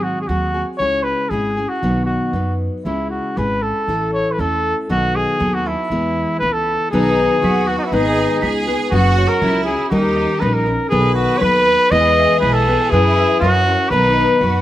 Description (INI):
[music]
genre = mexican folk, mariachi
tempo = 119 BPM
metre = 2/4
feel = straight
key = E major, B major from 6.9 s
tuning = A4 = 439 Hz
[part]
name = clear trumpet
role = melody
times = 0.0-14.6 s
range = D#4 to D#5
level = -18 LUFS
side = equal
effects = slapback echo
[part]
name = nylon-string guitar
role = accompaniment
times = 0.0-14.6 s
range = G#2 to B4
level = -20 LUFS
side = left 1 dB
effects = none
[part]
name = upright bass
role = bass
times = 0.0-14.6 s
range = F#1 to F#2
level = -22 LUFS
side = right 1 dB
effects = none
[part]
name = bright studio violin section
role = second line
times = 6.9-14.6 s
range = C#4 to B4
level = -23 LUFS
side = right 4 dB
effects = slapback echo
[part]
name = concert harp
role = arpeggios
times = 6.9-14.6 s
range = G#4 to B6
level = -22 LUFS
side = left 5 dB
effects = slapback echo
[sound]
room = little or no reverb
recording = recorded outdoors, with no room sound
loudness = -14 LUFS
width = side -13 dB against mid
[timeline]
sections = 0.0-6.9 A section; 6.9-14.6 B section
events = none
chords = 0.0 G#7; 0.8 C#m; 1.8 B; 2.8 C#m; 3.9 A; 4.9 B7; 5.9 E; 6.9 B; 7.9 G#m; 8.9 F#sus2; 9.9 D#7; 10.9 B7; 11.9 E; 12.9 F#7sus4; 13.4 F#7; 13.9 B